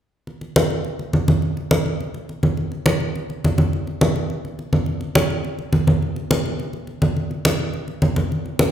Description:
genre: latin.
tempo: 209 BPM.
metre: 4/4.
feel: straight.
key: none.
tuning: none.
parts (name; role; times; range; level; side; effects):
congas; percussion; 0.3-8.7 s; none; -19 LUFS; equal; none.
room: wet recital hall reverb, RT60 1.4 s.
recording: recorded in a church or concert hall.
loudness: -19 LUFS.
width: side -10 dB against mid.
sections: 0.3-4.9 A section; 4.9-8.7 B section.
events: none.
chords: none.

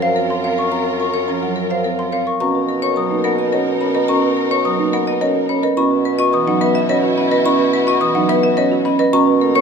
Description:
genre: classical, minimalist pattern music.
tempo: 107 BPM.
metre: 3/4.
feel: straight.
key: B major.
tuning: A4 = 436 Hz.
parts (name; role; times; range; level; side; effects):
marimba with medium hard mallets; melody; 0.0-9.6 s; Bb4 to B5; -22 LUFS; left 8 dB; none.
warm studio string section; sustained chords; 0.0-9.6 s; D#4 to Bb4; -25 LUFS; left 1 dB; none.
folk marimba with soft mallets; arpeggios; 0.0-9.6 s; Db4 to C#5; -23 LUFS; right 7 dB; none.
xylophone with soft rubber mallets; arpeggios; 0.0-9.6 s; D#5 to D#6; -20 LUFS; left 4 dB; none.
warm bassoon; bass; 0.0-9.6 s; Gb2 to B2; -22 LUFS; right 1 dB; none.
marimba with medium mallets; accompaniment; 0.2-9.6 s; E3 to C#4; -21 LUFS; right 5 dB; none.
room: moderate large studio reverb, RT60 0.9 s.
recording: minimal, uncompressed stereo recording.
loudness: -14 LUFS.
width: side -6 dB against mid.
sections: 0.0-2.4 A section; 2.4-9.6 B section.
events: none.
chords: 0.0 Gbmaj7; 2.4 Bmaj7; 5.8 F#7sus4/B.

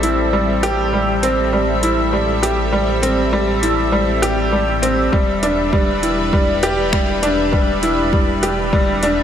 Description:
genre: piano and strings electronica.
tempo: 100 BPM.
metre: 4/4.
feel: straight.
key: A minor.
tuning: A4 = 441 Hz.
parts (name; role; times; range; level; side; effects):
lush unison pad; sustained chords; 0.0-9.2 s; G3 to E5; -21 LUFS; equal; chorus, phaser.
bright upright piano; riff; 0.0-9.2 s; G3 to G4; -17 LUFS; equal; ping-pong delay.
dark detuned saw bass; bass; 0.0-9.2 s; A1; -24 LUFS; equal; sidechain pumping.
deep house drum kit; drums; 0.0-9.1 s; finger snaps, hi-hat; -24 LUFS; equal; none.
electronic kick drum; drums; 5.1-8.8 s; none; -18 LUFS; equal; none.
room: moderate lush hall reverb, RT60 1.9 s.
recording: none.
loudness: -14 LUFS.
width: side -9 dB against mid.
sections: 0.0-9.2 A section.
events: build-up 0.0-9.2.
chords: 0.0 Am7; 5.1 Em7.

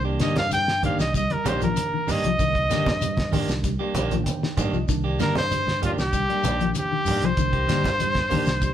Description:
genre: afrobeat.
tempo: 96 BPM.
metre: 4/4.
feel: straight.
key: C minor.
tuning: A4 = 440 Hz.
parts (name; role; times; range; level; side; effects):
bright trumpet; melody; 0.0-8.7 s; F4 to G5; -24 LUFS; equal; none.
reed electric piano; accompaniment; 0.0-8.7 s; D3 to G5; -32 LUFS; right 3 dB; none.
mellow electric guitar; arpeggios; 0.0-8.7 s; D3 to G3; -29 LUFS; left 5 dB; phaser.
electric guitar at the edge of break-up; stabs; 0.0-8.5 s; Eb3 to G4; -30 LUFS; right 4 dB; none.
fingered electric bass; bass; 0.0-8.7 s; Bb1 to G2; -29 LUFS; equal; none.
cloth-damped thuddy drum kit; drums; 0.2-8.7 s; hi-hat, kick drum, snare drum; -29 LUFS; equal; none.
shekere; percussion; 0.2-8.7 s; none; -35 LUFS; left 5 dB; none.
congas; percussion; 0.4-8.5 s; none; -30 LUFS; right 2 dB; none.
room: moderate large studio reverb, RT60 1.0 s.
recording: band playing live in one room.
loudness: -21 LUFS.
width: side -10 dB against mid.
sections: 0.0-8.7 A section.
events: reed electric piano fill 4.0-4.9.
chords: 0.0 Cm9.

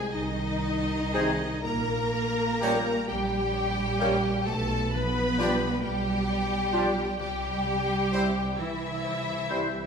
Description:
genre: classical, slow romantic movement for symphony orchestra.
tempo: 38-45 BPM (dotted quarters).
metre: 12/8.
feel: rubato.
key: unclear.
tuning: A4 = 440 Hz.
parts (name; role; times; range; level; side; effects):
rich studio violin section; melody; 0.0-9.9 s; Eb5 to B5; -32 LUFS; left 2 dB; none.
rich studio violin section; second line; 0.0-9.9 s; Eb4 to B4; -36 LUFS; left 3 dB; none.
warm studio viola section; accompaniment; 0.0-9.9 s; Eb4 to B4; -33 LUFS; equal; none.
concert harp; arpeggios; 0.0-9.9 s; Bb2 to Eb5; -37 LUFS; left 7 dB; none.
warm studio cello section; bass; 0.0-9.9 s; Eb3 to B3; -32 LUFS; right 2 dB; none.
warm studio double bass section; bass; 0.1-9.8 s; Bb1 to C2; -33 LUFS; right 3 dB; none.
clear oboe; second line; 1.1-9.7 s; C5 to D5; -41 LUFS; right 3 dB; none.
dark clarinet; second line; 1.1-9.7 s; E4 to Bb4; -36 LUFS; left 1 dB; none.
mellow small flute group; second line; 1.1-9.7 s; G6 to Ab6; -38 LUFS; left 4 dB; none.
warm bassoon; accompaniment; 1.1-9.7 s; G3 to C4; -37 LUFS; equal; none.
warm French horn section; sustained chords; 1.1-9.7 s; Ab3 to E4; -37 LUFS; left 4 dB; none.
warm trombone section; sustained chords; 1.1-9.7 s; Bb2 to G3; -36 LUFS; right 3 dB; none.
clear trumpet section; stabs; 1.1-9.7 s; G4 to C5; -36 LUFS; right 2 dB; none.
room: wet recital hall reverb, RT60 1.4 s.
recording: none.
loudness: -25 LUFS.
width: side -6 dB against mid.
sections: 0.0-9.9 A section.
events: none.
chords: 0.0 Ab/C; 1.7 Gdim/Bb; 4.5 G7/B; 7.2 C.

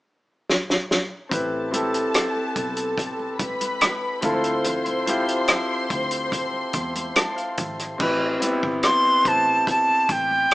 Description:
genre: lush 1970s-style soul.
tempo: 72 BPM.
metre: 4/4.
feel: straight.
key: A minor.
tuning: A4 = 441 Hz.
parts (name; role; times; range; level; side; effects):
warm soul drum kit; drums; 0.5-10.5 s; crash cymbal, hi-hat, kick drum, rim click, snare drum; -23 LUFS; equal; none.
warm studio string section; second line; 1.3-8.0 s; A4 to C6; -27 LUFS; left 1 dB; none.
clear concert grand piano; accompaniment; 1.3-10.5 s; B3 to C6; -25 LUFS; left 1 dB; none.
vintage muted fingered electric bass; bass; 1.3-10.5 s; G1 to E2; -38 LUFS; equal; none.
congas; percussion; 1.3-10.5 s; none; -39 LUFS; right 2 dB; none.
breathy bright jazz flute; melody; 8.8-10.5 s; G5 to C6; -17 LUFS; equal; none.
room: moderate stone room reverb, RT60 1.0 s.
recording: band playing live in one room, small speaker sound.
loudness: -20 LUFS.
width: side -18 dB against mid.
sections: 0.0-1.3 A section; 1.3-8.0 B section; 8.0-10.5 C section.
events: drum fill 0.5-1.3; grand piano fill 6.3-8.0.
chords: 0.0 N.C.; 1.3 Am7; 4.2 Dm7; 8.0 Am7.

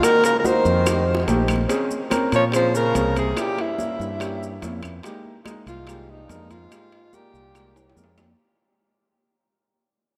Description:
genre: Afro-Cuban jazz.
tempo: 144 BPM.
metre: 4/4.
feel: straight.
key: F minor.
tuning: A4 = 440 Hz.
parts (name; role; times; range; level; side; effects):
breathy alto saxophone; melody; 0.0-8.0 s; Eb4 to Db5; -24 LUFS; equal; none.
bright trombone; second line; 0.0-8.0 s; G2 to F3; -32 LUFS; equal; none.
dark baby grand piano; accompaniment; 0.0-8.3 s; Ab3 to Bb4; -29 LUFS; equal; none.
bongos; percussion; 0.0-8.3 s; none; -35 LUFS; equal; none.
claves; percussion; 0.0-8.4 s; none; -39 LUFS; equal; none.
congas; percussion; 0.0-8.4 s; none; -34 LUFS; equal; none.
maracas; percussion; 0.0-8.4 s; none; -39 LUFS; equal; none.
timbales; percussion; 0.0-8.3 s; none; -35 LUFS; equal; none.
modern bright fingered electric bass; bass; 0.7-8.3 s; Bb1 to Bb2; -28 LUFS; equal; none.
room: wet cathedral reverb, RT60 6.1 s.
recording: in a vast, echoing space.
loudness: -21 LUFS.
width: mono.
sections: 0.0-8.4 A section.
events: fade-out 0.0-8.4; drum fill 0.9-1.7, 7.8-8.4.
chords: 0.0 Cm7b5; 0.9 F7; 1.7 Bbm9; 3.4 Bbdim7; 5.0 Fm11.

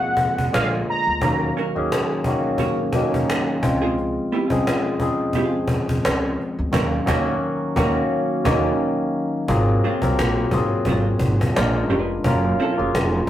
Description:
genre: R&B, neo-soul.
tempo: 87 BPM.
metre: 4/4.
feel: swing 54% on 16ths.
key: Eb dorian.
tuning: A4 = 439 Hz.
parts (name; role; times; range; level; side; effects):
warm velvety synth lead; melody; 0.0-1.5 s; F5 to Bb5; -21 LUFS; equal; chorus.
vintage hollow-body jazz guitar; second line; 0.0-12.9 s; Gb3 to Cb5; -26 LUFS; right 3 dB; none.
barky tine electric piano; accompaniment; 0.0-13.3 s; Db3 to Bb4; -22 LUFS; left 1 dB; overdrive, phaser.
cajon; drums; 0.2-13.3 s; none; -24 LUFS; equal; none.
upright bass; bass; 0.5-13.2 s; F1 to Eb2; -24 LUFS; equal; none.
room: moderate studio reverb, RT60 0.6 s.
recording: rough rehearsal-room recording.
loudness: -18 LUFS.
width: side -12 dB against mid.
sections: 0.0-9.5 A section; 9.5-13.3 B section.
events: band accent 6.7-9.5.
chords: 0.0 Ab13; 0.5 Bb7b9; 1.2 Ebm7; 3.6 Dbmaj7; 6.7 Ebm7; 9.5 Ab13; 11.6 Bb7b9; 12.2 Gbmaj7.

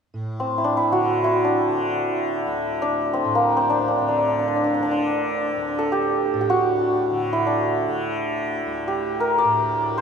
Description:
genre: indian classical.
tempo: free time.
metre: none.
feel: none.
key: D raga charukeshi.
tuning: A4 = 440 Hz.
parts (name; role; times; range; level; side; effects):
tanpura; drone; 0.1-10.0 s; D2 to D3; -29 LUFS; right 1 dB; none.
santur; melody; 0.4-10.0 s; Bb3 to D5; -20 LUFS; equal; slapback echo.
room: wet cathedral reverb, RT60 5.9 s.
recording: in a vast, echoing space.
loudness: -19 LUFS.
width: side -6 dB against mid.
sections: 0.1-10.0 A section.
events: none.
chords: none.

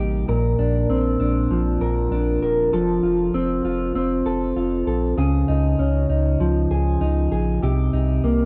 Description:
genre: dream pop.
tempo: 98 BPM.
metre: 4/4.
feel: straight.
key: unclear.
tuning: A4 = 440 Hz.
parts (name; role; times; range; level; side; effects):
mellow electric guitar; arpeggios; 0.0-8.5 s; Bb2 to Bb4; -22 LUFS; equal; lush chorus, cassette tape, analog delay.
warm sub bass; bass; 0.0-8.5 s; Eb1 to Db2; -25 LUFS; equal; none.
room: moderate spring reverb, RT60 2.2 s.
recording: home recording on cassette.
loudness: -21 LUFS.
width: mono.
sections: 0.0-8.5 A section.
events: none.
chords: 0.3 Bbadd9; 2.7 F; 5.2 Dbadd9; 7.6 Cm7.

